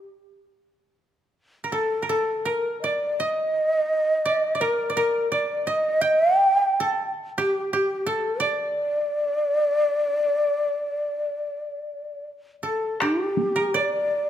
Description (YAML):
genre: japanese traditional, Japanese chamber music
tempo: 77-90 BPM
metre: 4/4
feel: rubato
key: D miyako bushi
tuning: A4 = 441 Hz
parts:
  - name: koto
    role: second line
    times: 0.0-14.3 s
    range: G4 to G5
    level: -27 LUFS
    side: right 3 dB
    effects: none
  - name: breathy mellow shakuhachi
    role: melody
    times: 1.7-14.3 s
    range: G4 to G5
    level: -22 LUFS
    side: equal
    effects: none
  - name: taiko ensemble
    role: percussion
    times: 13.0-13.5 s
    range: none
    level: -29 LUFS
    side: equal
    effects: none
room: moderate recital hall reverb, RT60 1.7 s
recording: minimal, uncompressed stereo recording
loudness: -21 LUFS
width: side -10 dB against mid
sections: 0.0-13.0 A section; 13.0-14.3 B section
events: none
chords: none